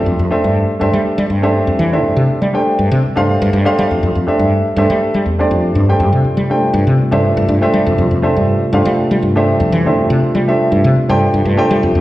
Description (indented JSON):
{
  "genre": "jazz",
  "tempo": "121 BPM",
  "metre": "4/4",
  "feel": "straight",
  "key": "unclear",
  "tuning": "A4 = 444 Hz",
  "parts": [
    { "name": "warm grand piano", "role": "accompaniment", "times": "0.0-12.0 s", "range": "A3 to G5", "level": "-15 LUFS", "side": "equal", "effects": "slapback echo" },
    { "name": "woody fretless electric bass", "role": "bass", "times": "0.0-12.0 s", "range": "E2 to G3", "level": "-14 LUFS", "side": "equal", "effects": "analog chorus" },
    { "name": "dark analog pad", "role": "sustained chords", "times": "6.0-12.0 s", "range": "C3 to F4", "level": "-19 LUFS", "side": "equal", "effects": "wide subtle chorus" }
  ],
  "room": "light reverb, studio reverb",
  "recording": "live gig heard through the venue's PA, recital hall reverb",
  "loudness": "-11 LUFS",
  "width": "side -16 dB against mid",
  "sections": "0.0-12.0 A section",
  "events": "none",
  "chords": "0.0 G9sus4"
}